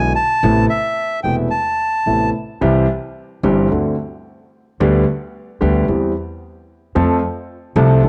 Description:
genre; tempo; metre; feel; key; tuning
tango; 111 BPM; 4/4; rubato; C major; A4 = 440 Hz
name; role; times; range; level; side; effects
bandoneon; melody; 0.0-2.3 s; E5 to A5; -20 LUFS; equal; cassette tape
clear concert grand piano; accompaniment; 0.0-8.1 s; E1 to A4; -20 LUFS; equal; cassette tape
upright bass; bass; 0.0-8.1 s; E1 to F2; -20 LUFS; equal; none
room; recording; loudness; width
moderate spring reverb, RT60 1.9 s, small room ambience; home recording on cassette; -17 LUFS; mono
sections
0.0-2.6 A section; 2.6-8.1 B section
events
none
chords
0.4 Amadd9; 2.6 C; 3.7 D7; 4.8 G/D; 5.9 C/E; 7.0 F

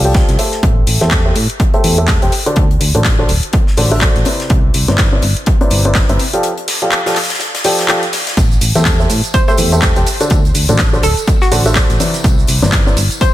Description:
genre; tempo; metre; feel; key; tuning
piano house; 124 BPM; 4/4; swing 58% on 16ths; A minor; A4 = 440 Hz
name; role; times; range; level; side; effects
clear upright piano; riff; 0.0-13.0 s; C3 to G5; -17 LUFS; equal; sidechain pumping, low-pass filter, dub echo
solid FM bass; bass; 0.0-13.1 s; D1 to A2; -15 LUFS; equal; sidechain pumping
house drum kit; drums; 0.0-13.3 s; cabasa, handclaps, hi-hat; -18 LUFS; left 1 dB; small room ambience
electronic kick drum; drums; 0.1-13.3 s; none; -14 LUFS; equal; overdrive, small room ambience
gated 80s drum kit; drums; 0.1-13.3 s; hi-hat, snare drum; -24 LUFS; left 2 dB; sidechain pumping on hats, high-pass filter on hats, small room ambience, high-pass filter on snare, high-pass filter on room
tambourine and congas; percussion; 8.4-13.3 s; none; -25 LUFS; left 4 dB; none
hollow square pluck; melody; 9.3-13.3 s; F#4 to C5; -20 LUFS; right 1 dB; chorus, dub echo
room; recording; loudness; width
small room ambience; none; -10 LUFS; side -14 dB against mid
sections
0.0-13.3 A section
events
break 6.4-8.4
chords
0.0 F69; 0.6 Am7; 2.3 D7; 4.3 Cmaj9; 6.4 F69; 8.4 Am7; 10.1 D7; 12.0 Cmaj9

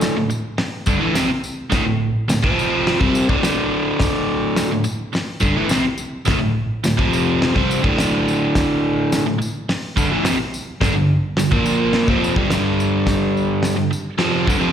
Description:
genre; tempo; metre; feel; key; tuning
garage rock duo or trio; 106 BPM; 4/4; straight; D minor; A4 = 439 Hz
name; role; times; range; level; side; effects
biting overdriven guitar; riff; 0.0-14.7 s; D2 to C4; -17 LUFS; equal; slapback echo
cloth-damped thuddy drum kit; drums; 0.0-14.6 s; hi-hat, kick drum, snare drum; -21 LUFS; equal; none
tambourine; percussion; 0.0-14.6 s; none; -32 LUFS; left 2 dB; none
room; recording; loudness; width
light reverb; live gig heard through the venue's PA, recital hall reverb; -16 LUFS; side -9 dB against mid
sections
0.0-14.7 A section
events
none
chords
0.0 D5; 2.4 F5; 3.0 D5; 7.0 F5; 7.6 D5; 10.8 G5; 11.5 Bb5; 12.1 G5

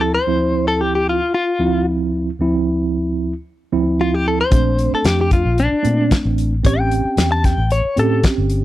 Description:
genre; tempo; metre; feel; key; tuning
straight-eighth soul blues; 113 BPM; 4/4; straight; D minor; A4 = 440 Hz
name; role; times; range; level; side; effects
direct-recorded clean electric guitar; melody; 0.0-8.2 s; D4 to A5; -18 LUFS; left 2 dB; harmonic tremolo
mellow tine electric piano; accompaniment; 0.0-8.6 s; D2 to G4; -19 LUFS; right 3 dB; medium stereo tremolo
vintage muted fingered electric bass; bass; 4.5-8.6 s; G1 to Bb2; -18 LUFS; left 1 dB; none
warm soul drum kit; drums; 4.5-8.6 s; hi-hat, kick drum, snare drum; -16 LUFS; left 1 dB; none
room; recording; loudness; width
small room ambience; dry, close 1970s-style studio recording; -15 LUFS; side -14 dB against mid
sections
0.0-8.6 A section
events
none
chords
0.0 Dm9; 4.5 Bbmaj7; 6.6 A7#9

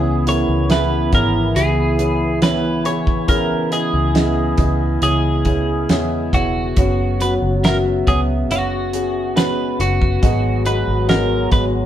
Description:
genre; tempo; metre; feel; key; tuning
pop ballad; 70 BPM; 4/4; straight; unclear; A4 = 440 Hz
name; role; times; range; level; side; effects
twelve-string electric guitar; melody; 0.0-11.6 s; F#4 to C#5; -22 LUFS; right 1 dB; none
dark French horn section; second line; 0.0-11.9 s; E3 to G#4; -25 LUFS; left 2 dB; none
warm upright piano; accompaniment; 0.0-11.9 s; G#2 to E5; -22 LUFS; right 1 dB; none
mellow woodwind section; sustained chords; 0.0-11.9 s; B2 to F#4; -26 LUFS; left 1 dB; none
vintage muted fingered electric bass; bass; 0.0-11.9 s; E1 to E2; -20 LUFS; equal; none
damped 70s drum kit; drums; 0.3-11.7 s; hi-hat, kick drum, snare drum; -19 LUFS; equal; none
room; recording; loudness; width
wet studio reverb, RT60 0.8 s; band playing live in one room; -15 LUFS; side -11 dB against mid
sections
0.0-11.9 A section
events
none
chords
0.0 C#m7; 6.8 F#sus4; 10.2 G#m7

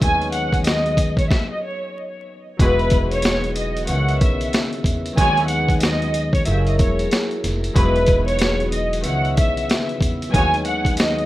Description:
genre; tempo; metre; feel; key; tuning
hip hop, boom-bap hip-hop; 93 BPM; 4/4; swing 61% on 16ths; unclear; A4 = 439 Hz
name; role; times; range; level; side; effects
warm studio violin section; melody; 0.0-11.3 s; B4 to G#5; -22 LUFS; equal; high-pass filter, low-pass filter, ping-pong delay
concert harp; accompaniment; 0.0-11.3 s; D#3 to G#4; -28 LUFS; left 2 dB; high-pass filter, low-pass filter
mellow tonewheel organ; sustained chords; 0.0-11.3 s; C#3 to E5; -29 LUFS; equal; slow rotary speaker, high-pass filter, low-pass filter
upright bass; bass; 0.0-11.3 s; E1 to E2; -23 LUFS; equal; none
boom bap sampler-style drum kit; drums; 0.0-11.3 s; hi-hat, kick drum, snare drum; -20 LUFS; equal; none
clear horn section; stabs; 2.6-10.6 s; G#3 to C#5; -29 LUFS; right 1 dB; high-pass filter, low-pass filter, ping-pong delay
room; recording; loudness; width
little or no reverb; rough home demo mix, vinyl crackle; -17 LUFS; side -16 dB against mid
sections
0.0-2.6 A section; 2.6-11.3 B section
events
stop 1.3-2.6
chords
0.0 B69/D#; 1.3 N.C.; 2.6 Emaj9; 3.9 C#m9; 5.2 B69/D#; 6.5 F#9; 7.8 Emaj9; 9.0 C#m9; 10.3 B69/D#

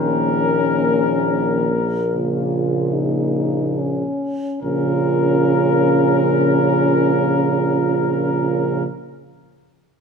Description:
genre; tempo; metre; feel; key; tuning
classical, hymn-like piece for brass band; 23-29 BPM (dotted quarters); 6/8; rubato; Bb minor; A4 = 440 Hz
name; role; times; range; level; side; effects
mellow trumpet section; melody; 0.0-8.8 s; Bb4; -22 LUFS; left 6 dB; none
dark French horn section; second line; 0.0-8.9 s; Bb3 to F4; -23 LUFS; right 8 dB; none
warm euphonium; accompaniment; 0.0-8.8 s; Db4 to F4; -22 LUFS; left 4 dB; none
warm trombone; accompaniment; 0.0-8.8 s; Db3 to Eb3; -23 LUFS; right 4 dB; none
clear tuba; bass; 0.0-8.9 s; Bb1; -22 LUFS; left 1 dB; none
room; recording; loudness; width
moderate recital hall reverb, RT60 1.6 s; none; -16 LUFS; side -6 dB against mid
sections
0.0-4.6 A section; 4.6-9.5 B section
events
slowing down 0.0-4.6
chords
0.0 Bbm

